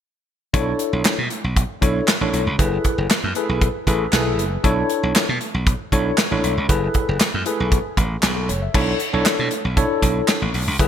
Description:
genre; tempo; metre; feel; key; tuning
early-eighties boogie funk; 117 BPM; 4/4; straight; B dorian; A4 = 441 Hz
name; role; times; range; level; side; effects
tine electric piano; accompaniment; 0.5-10.9 s; D4 to E5; -22 LUFS; left 2 dB; medium stereo tremolo
glassy slap bass; bass; 0.5-10.9 s; F#1 to B2; -22 LUFS; right 1 dB; none
modern studio drum kit; drums; 0.5-10.9 s; crash cymbal, handclaps, hi-hat, kick drum, snare drum; -20 LUFS; equal; gated reverb
room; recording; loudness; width
moderate lush hall reverb, RT60 1.8 s, small room ambience; bright 1980s-style digital production; -17 LUFS; side -9 dB against mid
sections
0.5-8.7 A section; 8.7-10.9 B section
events
none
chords
0.5 Bm11; 2.6 F#m11; 4.6 Bm11; 6.7 F#m11; 8.7 Bm11

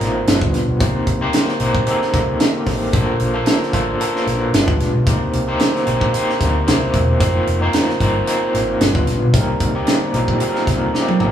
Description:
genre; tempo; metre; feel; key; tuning
polished 1980s jazz-funk pop; 113 BPM; 4/4; swing 54% on 16ths; C dorian; A4 = 440 Hz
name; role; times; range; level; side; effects
overdriven tine electric piano; accompaniment; 0.0-11.3 s; G3 to Eb5; -18 LUFS; equal; medium tremolo
picked electric bass with an envelope filter; bass; 0.0-11.3 s; E1 to D2; -20 LUFS; equal; none
tight funk drum kit; drums; 0.0-11.3 s; hi-hat, kick drum, snare drum, toms; -19 LUFS; right 1 dB; none
room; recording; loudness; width
moderate large studio reverb, RT60 0.9 s; band playing live in one room, small room ambience; -15 LUFS; side -10 dB against mid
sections
0.0-11.3 A section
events
drum fill 10.9-11.3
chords
0.3 G7; 0.8 Cm7; 2.9 Bbmaj9; 4.5 G7b9; 5.1 Cm7; 6.7 C7; 7.2 F7sus4; 8.8 G7; 9.3 Cm7

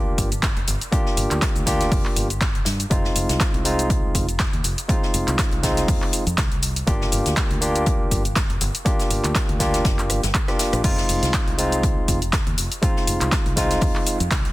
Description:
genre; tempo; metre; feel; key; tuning
deep house; 121 BPM; 4/4; swing 55% on 16ths; F dorian; A4 = 440 Hz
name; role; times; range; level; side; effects
barky tine electric piano; stabs; 0.0-14.2 s; Ab3 to G4; -25 LUFS; equal; sidechain pumping, analog delay
fingered electric bass; bass; 0.0-14.5 s; F1 to G2; -26 LUFS; equal; sidechain pumping
deep house drum kit; drums; 0.2-14.5 s; cabasa, crash cymbal, handclaps, hi-hat, rim click; -25 LUFS; equal; overdrive, small room ambience
electronic kick drum; drums; 0.2-14.4 s; none; -22 LUFS; equal; overdrive, small room ambience
natural country drum kit; drums; 0.2-14.5 s; hi-hat, snare drum; -33 LUFS; left 2 dB; high-pass filter on hats, small room ambience, high-pass filter on snare, high-pass filter on room
room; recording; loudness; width
digital ambience; dense, heavily limited modern master; -18 LUFS; side -18 dB against mid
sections
0.0-14.5 A section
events
drum fill 10.1-10.8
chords
0.0 Gm7; 2.9 Fm7; 6.9 Gm7; 10.8 Fm7

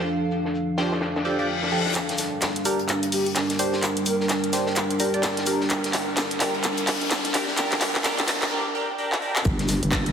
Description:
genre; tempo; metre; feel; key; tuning
bass house; 128 BPM; 4/4; swing 60% on 16ths; G minor; A4 = 438 Hz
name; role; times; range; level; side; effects
dark analog pad; sustained chords; 0.0-10.1 s; F3 to Bb4; -30 LUFS; right 2 dB; chorus, sidechain pumping
warbly tape-like pad; texture; 0.0-8.5 s; D4 to G5; -30 LUFS; left 1 dB; chorus, built-in reverb, sidechain pumping
tight funk drum kit; drums; 0.1-10.1 s; hi-hat, shaker, snare drum; -32 LUFS; left 2 dB; high-pass filter on hats, low-pass filter on hats, studio reverb, soft clipping on snare, high-pass filter on snare, low-pass filter on snare, high-pass filter on perc, low-pass filter on perc, high-pass filter on room, low-pass filter on room
band-passed chord stab; stabs; 0.8-9.3 s; F3 to D5; -28 LUFS; right 1 dB; phaser, sidechain pumping, dub echo
reverse cymbal, riser and impact; sound effects; 1.2-10.1 s; none; -33 LUFS; left 3 dB; none
garage drum kit; drums; 1.9-10.1 s; handclaps, hi-hat; -25 LUFS; equal; soft clipping on snare, studio reverb
breathy flute-like synth lead; melody; 3.1-4.3 s; G4 to Bb4; -30 LUFS; left 1 dB; ensemble chorus, dub echo
vowel-sweep wobble bass; bass; 9.5-10.1 s; G1; -24 LUFS; equal; chorus, overdrive, sidechain pumping
electronic kick drum; drums; 9.5-10.0 s; none; -25 LUFS; equal; studio reverb
room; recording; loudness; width
wet lush hall reverb, RT60 2.2 s; dense, heavily limited modern master, high-pass filter; -21 LUFS; side -7 dB against mid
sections
0.0-2.0 A section; 2.0-9.5 B section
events
reverse cymbal 1.2-2.0; build-up 2.0-9.5; drum fill 2.0-8.5, 9.1-9.5; filter sweep on synth stab 2.0-9.5; break 8.5-9.5; impact 9.5-10.1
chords
0.0 F6; 2.0 Gm

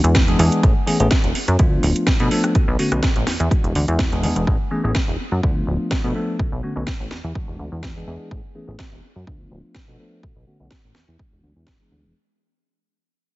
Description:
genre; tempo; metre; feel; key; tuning
filtered disco house; 125 BPM; 4/4; swing 53% on 16ths; unclear; A4 = 440 Hz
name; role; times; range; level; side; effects
bell-like tine electric piano; accompaniment; 0.0-12.1 s; D3 to A4; -23 LUFS; left 1 dB; phaser, sidechain pumping, low-pass filter
plucky analog bass; bass; 0.0-12.1 s; D1 to B2; -21 LUFS; equal; sidechain pumping, low-pass filter
house drum kit; drums; 0.0-11.8 s; hi-hat, rim click, snare drum; -25 LUFS; right 1 dB; sidechain pumping on hats, sidechain pumping on perc, sidechain pumping on cymbals
electronic kick drum; drums; 0.2-11.8 s; none; -20 LUFS; equal; none
room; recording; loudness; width
light reverb; heavily compressed radio sound, nothing above 7.8 kHz; -17 LUFS; side -18 dB against mid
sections
0.0-12.2 A section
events
fade-out 0.0-12.2; filter sweep 0.0-12.2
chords
0.0 E7; 0.6 Amaj9; 1.6 Dm6; 2.6 Bm9; 3.3 E7; 4.5 Amaj9; 5.4 Dm6; 6.4 Bm9; 7.1 E7; 8.3 Amaj9; 9.3 Dm6; 10.2 Bm9; 11.0 E7

